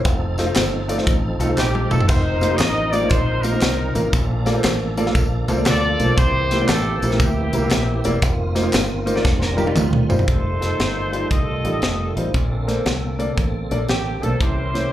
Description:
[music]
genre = uptempo gospel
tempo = 117 BPM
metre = 4/4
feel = swing 65% on 8ths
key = unclear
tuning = A4 = 440 Hz
[part]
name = mellow horn section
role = melody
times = 0.0-14.9 s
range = Bb3 to Eb5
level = -23 LUFS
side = equal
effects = slapback echo
[part]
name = fingered electric bass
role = bass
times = 0.0-14.8 s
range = E1 to D2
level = -23 LUFS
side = equal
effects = none
[part]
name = tambourine and handclaps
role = percussion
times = 0.0-10.2 s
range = none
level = -32 LUFS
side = right 1 dB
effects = none
[part]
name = tonewheel organ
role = sustained chords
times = 0.1-14.9 s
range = D3 to Bb4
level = -28 LUFS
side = right 4 dB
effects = slow rotary speaker, overdrive, chorus vibrato
[part]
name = crisp fusion drum kit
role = drums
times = 0.1-14.8 s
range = hi-hat, kick drum, snare drum, splash cymbal, toms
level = -22 LUFS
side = equal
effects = none
[part]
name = warm upright piano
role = accompaniment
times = 0.4-14.9 s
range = Bb2 to F5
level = -24 LUFS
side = left 1 dB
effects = slapback echo
[part]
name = semi-hollow electric guitar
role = second line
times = 9.2-10.2 s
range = A3 to Bb4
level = -28 LUFS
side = right 7 dB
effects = ensemble chorus, slapback echo
[sound]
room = small room ambience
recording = live gig heard through the venue's PA, club reverb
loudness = -17 LUFS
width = side -12 dB against mid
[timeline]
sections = 0.0-10.3 A section; 10.3-14.9 B section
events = drum fill 1.6-2.1, 9.3-10.3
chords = 0.0 F7; 2.1 F7sus4; 4.1 Bbmaj7; 6.2 C7; 8.2 F7sus4; 9.3 F9sus4; 10.3 F9; 12.3 Bbmaj9; 14.4 C7b9

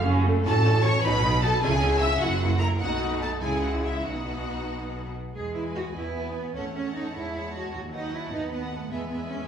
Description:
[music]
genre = quick classical-period movement for string orchestra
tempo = 92-104 BPM (dotted quarters)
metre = 6/8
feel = rubato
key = E major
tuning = A4 = 440 Hz
[part]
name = warm chamber viola section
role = accompaniment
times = 0.0-9.5 s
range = F#3 to A4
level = -32 LUFS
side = right 1 dB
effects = none
[part]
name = clear chamber cello section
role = bass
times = 0.0-9.4 s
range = F#2 to G#4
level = -30 LUFS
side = right 1 dB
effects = none
[part]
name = clear symphonic double bass section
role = bass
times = 0.0-9.4 s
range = F#1 to E2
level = -29 LUFS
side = right 2 dB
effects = none
[part]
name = clear studio violin section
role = melody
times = 0.5-9.5 s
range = E5 to E6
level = -31 LUFS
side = left 1 dB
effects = none
[part]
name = clear chamber violin section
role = second line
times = 0.5-9.5 s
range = E4 to F#5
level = -32 LUFS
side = left 1 dB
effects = none
[sound]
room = wet recital hall reverb, RT60 1.5 s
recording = recorded in a church or concert hall, small room ambience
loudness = -24 LUFS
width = side -8 dB against mid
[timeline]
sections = 0.0-5.3 A section; 5.3-9.5 B section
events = none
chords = 0.5 F#m/A; 1.0 B; 1.6 C#m; 2.2 F#7; 2.8 B7; 3.4 C#m; 4.1 B; 5.3 E; 6.5 F#m7/E; 7.7 B7/D#; 8.9 E

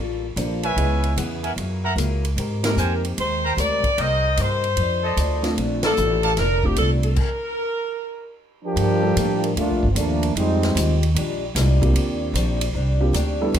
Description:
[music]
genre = jazz, big band swing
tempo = 150 BPM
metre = 4/4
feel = swing 66% on 8ths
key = Bb major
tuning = A4 = 440 Hz
[part]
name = picked old ladder-braced acoustic guitar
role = accompaniment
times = 0.0-13.6 s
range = F2 to Bb4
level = -30 LUFS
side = left 4 dB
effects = none
[part]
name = upright bass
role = bass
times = 0.0-13.6 s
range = F1 to A2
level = -22 LUFS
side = equal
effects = none
[part]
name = warm baby grand piano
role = accompaniment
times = 0.4-13.5 s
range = G3 to Eb5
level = -27 LUFS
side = right 2 dB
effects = none
[part]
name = swinging big-band drum kit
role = drums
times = 0.4-13.6 s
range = crash cymbal, hi-hat, kick drum, ride cymbal, snare drum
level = -29 LUFS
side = equal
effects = none
[part]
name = clear trumpet section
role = stabs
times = 0.6-6.3 s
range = A4 to Bb5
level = -27 LUFS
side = right 2 dB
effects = none
[part]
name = mellow saxophone section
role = melody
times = 2.6-8.3 s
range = G4 to Eb5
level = -23 LUFS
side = left 1 dB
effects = none
[part]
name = clear trombone section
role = second line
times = 8.6-11.0 s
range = F3 to Bb4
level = -21 LUFS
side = right 1 dB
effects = none
[sound]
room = light reverb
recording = close, detailed microphones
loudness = -19 LUFS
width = side -9 dB against mid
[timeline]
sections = 0.0-8.8 A section; 8.8-13.6 B section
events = band accent 2.6, 5.8; stop 7.2-8.8; trombone section solo 8.8-13.6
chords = 0.0 Gm9; 0.8 Dbm7; 1.6 Gb9; 2.4 Abmaj9; 4.0 Cm7; 4.8 F6; 5.6 Bbmaj7; 8.8 Gm9; 10.4 Fm9; 11.2 Bb13; 11.9 Ebmaj13

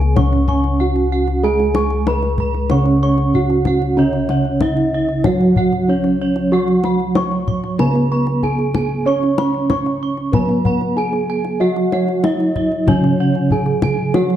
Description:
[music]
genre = Javanese gamelan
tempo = 94 BPM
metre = 4/4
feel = straight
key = C# slendro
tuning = A4 = 440 Hz
[part]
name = gamelan-type bronze metallophone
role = melody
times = 0.0-14.4 s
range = C#4 to C#5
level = -21 LUFS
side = right 1 dB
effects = none
[part]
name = gamelan-type bronze metallophone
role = accompaniment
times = 0.0-14.4 s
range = C#3 to C#4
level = -20 LUFS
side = right 4 dB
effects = none
[part]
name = gamelan-type bronze metallophone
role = arpeggios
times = 0.0-14.4 s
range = C#5 to C#6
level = -27 LUFS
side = right 3 dB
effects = none
[part]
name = gamelan-type bossed gongs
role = bass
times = 0.0-14.4 s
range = C#2 to C#5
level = -19 LUFS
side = left 1 dB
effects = none
[part]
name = kendang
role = percussion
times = 0.0-14.4 s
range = none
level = -22 LUFS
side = left 3 dB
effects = none
[part]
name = gamelan-type bossed gongs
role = arpeggios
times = 0.2-14.4 s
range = C#5 to C#6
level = -27 LUFS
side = left 6 dB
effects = tape echo
[sound]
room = moderate recital hall reverb, RT60 1.5 s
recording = dark, warm production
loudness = -14 LUFS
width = side -11 dB against mid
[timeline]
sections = 0.0-14.4 A section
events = none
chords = none

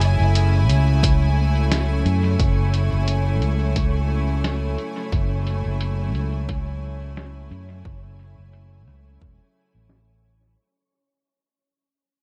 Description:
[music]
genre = ambient dub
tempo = 88 BPM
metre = 4/4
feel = swing 57% on 16ths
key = F# minor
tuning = A4 = 440 Hz
[part]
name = rich studio string section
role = sustained chords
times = 0.0-10.6 s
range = C#3 to G#5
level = -30 LUFS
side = equal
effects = none
[part]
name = fingered electric bass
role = bass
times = 0.0-10.5 s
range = E1 to F#2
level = -22 LUFS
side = equal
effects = none
[part]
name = lo-fi sampler-style drum kit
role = drums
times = 0.0-10.4 s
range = hi-hat, snare drum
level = -32 LUFS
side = equal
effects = low-pass filter on snare, small room ambience, low-pass filter on hats, low-pass filter on perc, dub echo
[part]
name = wind-like tuned noise texture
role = texture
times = 0.7-10.6 s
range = C#4 to C#5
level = -37 LUFS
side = equal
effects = built-in reverb
[part]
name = electronic kick drum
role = drums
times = 1.0-9.4 s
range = none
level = -25 LUFS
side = equal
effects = overdrive, small room ambience
[sound]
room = digital ambience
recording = none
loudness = -21 LUFS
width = mono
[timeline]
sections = 0.0-10.6 A section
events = fade-out 0.0-10.6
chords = 0.0 F#m9

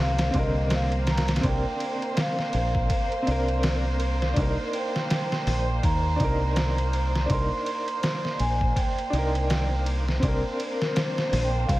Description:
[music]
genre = trip hop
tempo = 82 BPM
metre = 4/4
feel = swing 59% on 16ths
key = C minor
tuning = A4 = 439 Hz
[part]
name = vibraphone with soft mallets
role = melody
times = 0.0-11.8 s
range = Bb4 to C6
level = -31 LUFS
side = right 1 dB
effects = tape echo
[part]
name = clear upright piano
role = accompaniment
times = 0.0-11.8 s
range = D3 to Bb4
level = -32 LUFS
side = equal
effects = tremolo, tape echo
[part]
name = muted symphonic violin section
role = sustained chords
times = 0.0-11.8 s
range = Bb3 to C5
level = -32 LUFS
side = right 1 dB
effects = vintage 12-bit sampler grit
[part]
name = deep dub fingered electric bass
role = bass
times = 0.0-11.8 s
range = Bb1 to Eb2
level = -25 LUFS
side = equal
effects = none
[part]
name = trip hop sampler-style drum kit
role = drums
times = 0.2-11.8 s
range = hi-hat, kick drum, ride cymbal, snare drum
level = -28 LUFS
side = equal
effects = none
[sound]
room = small room ambience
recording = vinyl crackle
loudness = -23 LUFS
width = side -17 dB against mid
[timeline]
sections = 0.0-11.8 A section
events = none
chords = 0.0 Bbadd9; 4.4 Cm7; 10.2 Bbadd9

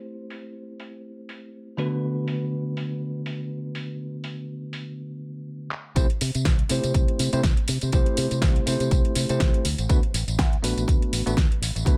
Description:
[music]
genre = nu-disco, nu disco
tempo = 122 BPM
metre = 4/4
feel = swing 56% on 16ths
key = unclear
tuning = A4 = 441 Hz
[part]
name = bell-like tine electric piano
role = accompaniment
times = 0.0-12.0 s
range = D3 to C5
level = -32 LUFS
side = equal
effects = sidechain pumping, digital delay
[part]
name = pop drum kit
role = drums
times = 0.3-12.0 s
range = handclaps, hi-hat, snare drum, tambourine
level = -32 LUFS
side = equal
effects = low-pass filter on hats, low-pass filter on snare, low-pass filter on cymbals, low-pass filter on perc
[part]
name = fingered electric bass with an envelope filter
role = bass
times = 6.0-12.0 s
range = A1 to C3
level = -29 LUFS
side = equal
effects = none
[part]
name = electronic kick drum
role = drums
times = 6.0-12.0 s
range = none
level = -24 LUFS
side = equal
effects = none
[sound]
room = little or no reverb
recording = none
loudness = -24 LUFS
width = mono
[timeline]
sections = 0.0-6.0 A section; 6.0-12.0 B section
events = drum fill 5.7; drop 6.0-12.0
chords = 0.0 C6; 1.8 Bm7/D; 6.0 C6; 9.7 Bm7

